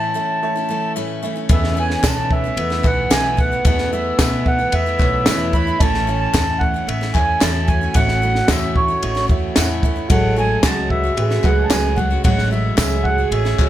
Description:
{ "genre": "indie folk with a building arrangement", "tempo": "112 BPM", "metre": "4/4", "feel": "straight", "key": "A major", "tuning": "A4 = 440 Hz", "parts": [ { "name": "mellow accordion", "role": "melody", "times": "0.0-13.7 s", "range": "C#5 to B5", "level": "-21 LUFS", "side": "right 1 dB", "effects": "none" }, { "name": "clear baby grand piano", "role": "accompaniment", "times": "0.0-13.7 s", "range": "A1 to F#5", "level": "-27 LUFS", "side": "right 6 dB", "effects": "none" }, { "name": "picked steel-string acoustic guitar", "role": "accompaniment", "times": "0.0-13.7 s", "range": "E2 to F#4", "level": "-26 LUFS", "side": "left 5 dB", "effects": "none" }, { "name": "warm French horn", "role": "second line", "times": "1.5-13.7 s", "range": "B3 to A4", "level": "-25 LUFS", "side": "right 3 dB", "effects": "none" }, { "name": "upright bass", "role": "bass", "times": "1.5-13.7 s", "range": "A1 to E2", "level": "-22 LUFS", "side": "equal", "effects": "none" }, { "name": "compact cocktail drum kit", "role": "drums", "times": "1.5-13.7 s", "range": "kick drum, ride cymbal, snare drum", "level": "-19 LUFS", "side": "equal", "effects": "none" }, { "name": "group handclap", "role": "percussion", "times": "2.0-13.7 s", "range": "none", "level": "-29 LUFS", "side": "left 10 dB", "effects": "none" }, { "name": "tambourine", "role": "percussion", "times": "2.0-12.9 s", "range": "none", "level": "-30 LUFS", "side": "right 8 dB", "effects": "none" } ], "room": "light reverb", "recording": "none", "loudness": "-15 LUFS", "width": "side -12 dB against mid", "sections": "0.0-1.5 A section; 1.5-13.7 B section", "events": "break 0.0-1.5", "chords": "0.0 A; 1.5 Esus4; 5.8 A; 10.1 F#madd9/A" }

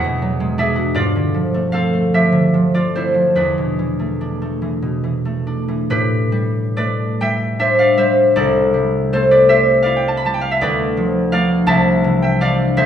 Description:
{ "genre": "classical, solo harp piece", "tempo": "43-56 BPM (dotted quarters)", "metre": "6/8", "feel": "rubato", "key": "A minor", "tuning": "A4 = 444 Hz", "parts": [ { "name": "concert harp", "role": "solo", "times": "0.0-12.9 s", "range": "C2 to B5", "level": "-14 LUFS", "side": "equal", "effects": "none" } ], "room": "wet recital hall reverb, RT60 1.2 s", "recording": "heard from further back in the room", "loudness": "-14 LUFS", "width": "side -9 dB against mid", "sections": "0.0-5.9 A section; 5.9-12.9 B section", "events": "none", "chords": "0.0 E9; 1.0 G9sus4; 3.4 E7sus4; 5.9 Am11; 8.3 C69; 10.6 Dm6; 11.7 Cadd9" }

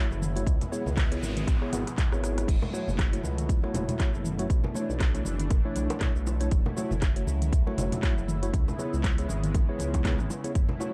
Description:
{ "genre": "afro house", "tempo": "119 BPM", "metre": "4/4", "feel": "swing 57% on 16ths", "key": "F# minor", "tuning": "A4 = 440 Hz", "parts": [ { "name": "warm analog pad", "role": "sustained chords", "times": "0.0-10.9 s", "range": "B2 to E4", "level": "-39 LUFS", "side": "equal", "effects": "chorus, sidechain pumping" }, { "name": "tine electric piano", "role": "stabs", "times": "0.0-10.9 s", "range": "A3 to F#5", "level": "-37 LUFS", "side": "equal", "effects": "overdrive, sidechain pumping, delay" }, { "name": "smooth synth bass", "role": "bass", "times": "0.1-10.7 s", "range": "F#1 to C#2", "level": "-33 LUFS", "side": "equal", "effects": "sidechain pumping" }, { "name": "afro-pop drum kit", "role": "drums", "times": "0.1-10.9 s", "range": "cabasa, crash cymbal, handclaps, hi-hat, rim click, toms", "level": "-38 LUFS", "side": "equal", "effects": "none" }, { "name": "congas", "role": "percussion", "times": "0.1-10.9 s", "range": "none", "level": "-40 LUFS", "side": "equal", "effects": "none" }, { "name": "electronic kick drum", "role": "drums", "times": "0.5-10.7 s", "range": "none", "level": "-28 LUFS", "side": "equal", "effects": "none" }, { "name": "noise sweep", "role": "sound effects", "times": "0.8-2.5 s", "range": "none", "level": "-46 LUFS", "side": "equal", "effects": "none" }, { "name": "bongos", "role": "percussion", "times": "2.6-10.9 s", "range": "none", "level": "-42 LUFS", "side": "equal", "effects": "none" } ], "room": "little or no reverb", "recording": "dark, warm production", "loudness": "-28 LUFS", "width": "mono", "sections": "0.0-10.9 A section", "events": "noise sweep 0.8-2.5; drum fill 1.5-2.5", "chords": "0.5 C#m7; 2.5 F#m7; 4.5 Bm11; 6.5 F#m7; 8.5 C#m7" }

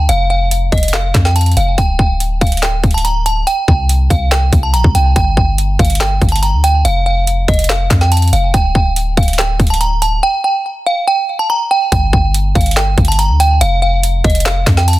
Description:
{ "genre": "hip hop, trap", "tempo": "142 BPM", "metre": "4/4", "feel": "half-time", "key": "G minor", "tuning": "A4 = 440 Hz", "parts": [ { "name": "delicate synth tine bell", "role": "melody", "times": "0.0-15.0 s", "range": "Eb5 to Bb5", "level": "-16 LUFS", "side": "right 2 dB", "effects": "chorus, ping-pong delay" }, { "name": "warm 808-style bass", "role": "bass", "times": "0.0-15.0 s", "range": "D1 to F2", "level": "-14 LUFS", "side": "equal", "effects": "none" }, { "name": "trap drum kit", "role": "drums", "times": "0.1-15.0 s", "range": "handclaps, hi-hat, kick drum, snare drum", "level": "-14 LUFS", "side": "equal", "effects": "none" } ], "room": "little or no reverb", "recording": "dense, heavily limited modern master", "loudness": "-11 LUFS", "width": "side -16 dB against mid", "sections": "0.0-11.9 A section; 11.9-15.0 B section", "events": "none", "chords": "0.1 N.C.; 1.8 Dsus4; 3.5 C5; 5.2 G5; 6.8 N.C.; 8.5 Dsus4; 10.2 N.C.; 11.9 G5; 13.6 N.C." }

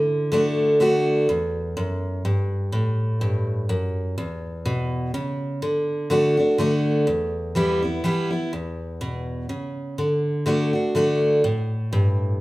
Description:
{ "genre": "bluegrass", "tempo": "124 BPM", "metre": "3/4", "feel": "swing 55% on 8ths", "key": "E dorian", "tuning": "A4 = 440 Hz", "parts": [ { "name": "picked steel-string acoustic guitar", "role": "solo", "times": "0.0-12.4 s", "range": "E2 to F#4", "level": "-20 LUFS", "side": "equal", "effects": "none" } ], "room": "moderate large studio reverb, RT60 1.1 s", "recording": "band playing live in one room", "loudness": "-20 LUFS", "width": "side -19 dB against mid", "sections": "0.0-8.5 A section; 8.5-12.4 B section", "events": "none", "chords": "0.0 D; 1.3 Em; 2.7 F#m; 4.2 E5; 5.6 D; 7.1 Em; 8.5 E5; 10.0 D" }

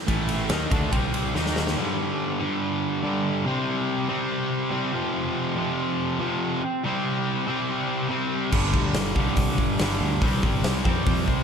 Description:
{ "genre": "hard rock", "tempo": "142 BPM", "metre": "4/4", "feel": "straight", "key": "unclear", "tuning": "A4 = 437 Hz", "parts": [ { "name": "distorted electric guitar", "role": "riff", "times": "0.1-11.4 s", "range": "F2 to D#4", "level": "-24 LUFS", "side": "equal", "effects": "distortion" }, { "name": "fuzz fingered electric bass", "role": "bass", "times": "0.1-1.7, 8.5-11.4 s", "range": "G1 to F2", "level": "-28 LUFS", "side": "equal", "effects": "overdrive" }, { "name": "big rock drum kit", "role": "drums", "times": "0.1-1.8, 8.5-11.4 s", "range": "crash cymbal, hi-hat, kick drum, ride cymbal, snare drum", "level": "-26 LUFS", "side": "equal", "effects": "none" } ], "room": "moderate scoring stage reverb, RT60 1.7 s", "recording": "lossy compression artefacts", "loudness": "-22 LUFS", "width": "side -6 dB against mid", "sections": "0.0-1.8 A section; 1.8-11.4 B section", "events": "drum fill 1.3-1.8", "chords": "0.0 A5; 0.9 C5; 1.3 D#5; 1.8 G5; 3.5 C5; 4.9 F5; 6.8 C5; 8.5 G5; 10.2 C5" }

